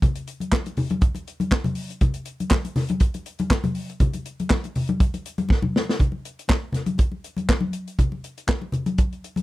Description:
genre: disco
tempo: 120 BPM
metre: 4/4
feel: straight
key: none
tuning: none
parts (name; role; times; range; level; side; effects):
- warm soul drum kit; drums; 0.0-9.4 s; handclaps, hi-hat, kick drum, snare drum; -21 LUFS; equal; none
- congas; percussion; 0.0-9.4 s; none; -26 LUFS; left 2 dB; none
room: little or no reverb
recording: none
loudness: -21 LUFS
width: side -17 dB against mid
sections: 0.0-6.0 A section; 6.0-9.4 B section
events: drum fill 5.5-6.0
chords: none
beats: | 0.02 0.52 1.02 1.51 | 2.01 2.51 3.01 3.50 | 4.00 4.50 5.00 5.50 | 5.99 6.49 6.99 7.49 | 7.99 8.49 8.98

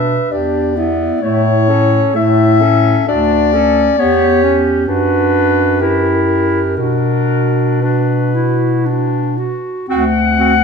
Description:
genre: classical, lyrical piece for single-reed quartet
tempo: 56-68 BPM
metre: 3/4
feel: rubato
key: B minor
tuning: A4 = 440 Hz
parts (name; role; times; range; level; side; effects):
- mellow clarinet; melody; 0.0-10.6 s; A#4 to F#5; -16 LUFS; left 4 dB; none
- clear alto saxophone; second line; 0.0-10.5 s; E4 to B4; -18 LUFS; right 7 dB; none
- bright clarinet; accompaniment; 0.0-10.5 s; A3 to F#4; -18 LUFS; left 4 dB; none
- mellow bass clarinet; bass; 0.0-10.6 s; D2 to B2; -16 LUFS; equal; none
room: moderate recital hall reverb, RT60 1.6 s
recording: none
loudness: -11 LUFS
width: side -5 dB against mid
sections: 0.0-9.9 A section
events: none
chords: 0.3 Em7; 1.2 A; 3.1 Dmaj7; 4.0 Em; 4.9 Bm/F#; 5.8 F#7b9; 6.8 Bm; 9.9 D7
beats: 0.30 | 1.22 2.15 3.08 | 3.99 4.88 5.80 | 6.78 7.83 8.86 | 9.89

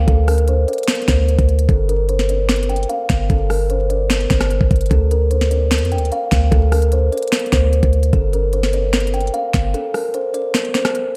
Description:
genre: hip hop, trap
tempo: 149 BPM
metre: 4/4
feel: half-time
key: G minor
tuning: A4 = 439 Hz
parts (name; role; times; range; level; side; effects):
- kalimba; melody; 0.0-11.2 s; A4 to G5; -23 LUFS; equal; low-pass filter
- warm 808-style bass; bass; 0.0-9.7 s; G1 to F2; -19 LUFS; equal; none
- trap drum kit; drums; 0.1-11.0 s; finger snaps, hi-hat, kick drum, rim click, snare drum; -21 LUFS; equal; none
room: light reverb, digital ambience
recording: vinyl crackle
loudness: -17 LUFS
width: mono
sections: 0.0-11.2 A section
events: kick muted 9.7-11.2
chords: 0.0 D7(no3); 1.7 G5; 4.9 D7(no3); 8.1 G5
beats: | 0.08 0.48 0.88 1.28 | 1.69 2.09 2.49 2.90 | 3.30 3.70 4.10 4.51 | 4.91 5.31 5.71 6.12 | 6.52 6.92 7.33 7.73 | 8.13 8.53 8.94 9.34 | 9.74 10.14 10.55 10.95

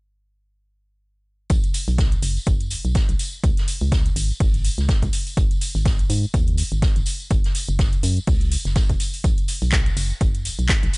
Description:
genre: piano house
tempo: 124 BPM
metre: 4/4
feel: swing 57% on 16ths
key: unclear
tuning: A4 = 436 Hz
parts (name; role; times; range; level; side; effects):
- organ-like FM bass; bass; 1.5-10.9 s; F#1 to G#2; -22 LUFS; equal; transformer saturation, sidechain pumping
- electronic kick drum; drums; 1.5-10.8 s; none; -20 LUFS; equal; none
- house drum kit; drums; 1.5-11.0 s; handclaps, hi-hat; -28 LUFS; equal; overdrive
- soft-mallet drum kit; drums; 1.5-11.0 s; hi-hat, snare drum; -36 LUFS; right 2 dB; high-pass filter on hats, high-pass filter on snare, high-pass filter on room
- tambourine; percussion; 1.5-11.0 s; none; -34 LUFS; left 1 dB; none
room: small room ambience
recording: nothing above 10.9 kHz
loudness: -18 LUFS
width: side -30 dB against mid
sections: 1.5-11.0 A section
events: none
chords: none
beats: | 1.50 1.98 2.47 2.95 | 3.44 3.92 4.40 4.89 | 5.37 5.86 6.34 6.82 | 7.31 7.79 8.28 8.76 | 9.24 9.73 10.21 10.69

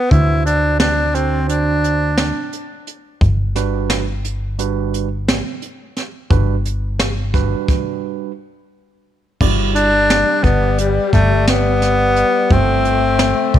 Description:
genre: progressive instrumental, band music in an uneven meter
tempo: 174 BPM (eighths)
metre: 9/8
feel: straight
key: G major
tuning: A4 = 444 Hz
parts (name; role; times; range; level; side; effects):
- clear tenor saxophone; melody; 0.0-2.5, 9.8-13.6 s; G3 to E4; -16 LUFS; equal; tape echo
- overdriven tine electric piano; accompaniment; 0.1-13.6 s; D3 to D5; -24 LUFS; right 15 dB; none
- plucky analog bass; bass; 0.1-13.6 s; G1 to D2; -18 LUFS; equal; none
- jazz brush drum kit; drums; 0.1-13.6 s; crash cymbal, hi-hat, kick drum, snare drum; -19 LUFS; equal; none
- breathy alto saxophone; second line; 9.4-13.6 s; G3 to A3; -21 LUFS; left 11 dB; none
room: light reverb, small room ambience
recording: 1960s-style stereo with parts hard left and right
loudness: -14 LUFS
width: side -11 dB against mid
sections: 0.0-9.4 A section; 9.4-13.6 B section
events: break 7.9-9.4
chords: 0.1 D7; 3.2 Gmaj7; 9.4 Em7/G; 12.5 F/G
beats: | 0.12 0.46 0.81 1.15 1.50 1.84 2.18 2.53 2.87 | 3.22 3.56 3.91 4.25 4.60 4.94 5.28 5.63 5.97 | 6.32 6.66 7.01 7.35 7.70 8.04 8.38 8.73 9.07 | 9.42 9.76 10.11 10.45 10.79 11.14 11.48 11.83 12.17 | 12.52 12.86 13.20 13.55

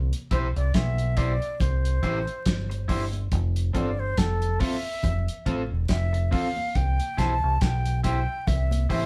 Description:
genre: roots reggae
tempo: 70 BPM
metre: 4/4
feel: swing 56% on 16ths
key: C major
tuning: A4 = 440 Hz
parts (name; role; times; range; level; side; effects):
- deep dub fingered electric bass; bass; 0.0-9.1 s; E1 to C2; -28 LUFS; equal; none
- cloth-damped thuddy drum kit; drums; 0.1-9.1 s; hi-hat, kick drum, snare drum; -30 LUFS; equal; none
- mellow silver concert flute; melody; 0.3-9.1 s; A4 to A5; -33 LUFS; equal; none
- electric guitar at the edge of break-up; accompaniment; 0.3-9.0 s; C4 to C5; -33 LUFS; equal; none
- congas; percussion; 0.3-9.1 s; none; -40 LUFS; equal; none
room: moderate studio reverb, RT60 0.7 s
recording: band playing live in one room, vinyl crackle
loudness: -25 LUFS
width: mono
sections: 0.0-6.8 A section; 6.8-9.1 B section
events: none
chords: 0.0 C; 3.3 F; 6.8 C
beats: 0.75 1.60 2.46 | 3.32 4.18 5.04 5.90 | 6.75 7.61 8.47

